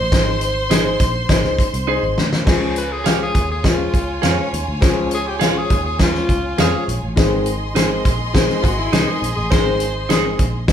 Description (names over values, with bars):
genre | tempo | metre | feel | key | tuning
uptempo 1960s-style soul | 102 BPM | 4/4 | straight | Db major | A4 = 440 Hz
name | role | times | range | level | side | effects
bright alto saxophone | melody | 0.0-10.4 s | Db4 to C5 | -24 LUFS | left 1 dB | none
rich studio violin section | second line | 0.0-10.7 s | F4 to C6 | -26 LUFS | equal | none
fingered electric bass | bass | 0.0-10.7 s | Ab1 to F2 | -25 LUFS | right 1 dB | none
clear baby grand piano | accompaniment | 0.1-10.7 s | Eb3 to C5 | -22 LUFS | left 3 dB | none
natural country drum kit | drums | 0.1-10.7 s | crash cymbal, hi-hat, kick drum, snare drum | -18 LUFS | equal | none
clean electric guitar | stabs | 0.7-10.2 s | Eb4 to F5 | -23 LUFS | right 6 dB | none
clear saxophone section | second line | 9.5-9.7 s | Ab3 to C5 | -26 LUFS | right 2 dB | none
room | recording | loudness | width
moderate large studio reverb, RT60 0.8 s | band playing live in one room | -15 LUFS | side -9 dB against mid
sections
0.0-2.5 A section; 2.5-10.7 B section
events
drum fill 1.9-2.5; alto saxophone solo 2.5-10.7; band accent 9.5-10.7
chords
0.0 Ab; 2.5 Db; 7.2 Ab